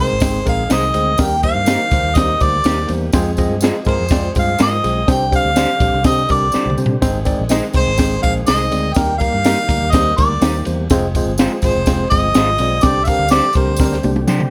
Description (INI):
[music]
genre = uptempo 1960s-style soul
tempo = 124 BPM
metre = 4/4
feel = straight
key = C minor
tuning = A4 = 440 Hz
[part]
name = mellow harmonica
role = melody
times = 0.0-14.0 s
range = C5 to G5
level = -20 LUFS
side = equal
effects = none
[part]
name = mellow tine electric piano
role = accompaniment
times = 0.0-14.5 s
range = G3 to G5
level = -24 LUFS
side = equal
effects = none
[part]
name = percussive tonewheel organ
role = sustained chords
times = 0.0-14.5 s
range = D3 to Ab4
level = -31 LUFS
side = equal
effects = none
[part]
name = vintage muted fingered electric bass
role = bass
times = 0.0-14.5 s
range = F1 to C3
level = -24 LUFS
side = equal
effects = none
[part]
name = compact cocktail drum kit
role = drums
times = 0.2-14.5 s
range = kick drum, ride cymbal, snare drum, toms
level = -20 LUFS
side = equal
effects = none
[part]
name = tambourine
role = percussion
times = 0.2-14.4 s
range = none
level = -35 LUFS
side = equal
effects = none
[part]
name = electric guitar through a small old amp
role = stabs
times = 0.7-14.4 s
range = Bb3 to C5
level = -28 LUFS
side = equal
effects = spring reverb
[sound]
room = light reverb, small room ambience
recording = none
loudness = -16 LUFS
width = mono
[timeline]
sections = 0.0-14.5 A section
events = drum fill 6.5-7.0, 13.8-14.5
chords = 0.0 Ab; 1.2 Eb; 3.1 Fm; 5.1 Csus2; 7.0 Ab; 9.0 Eb; 10.9 Fm; 12.8 Csus2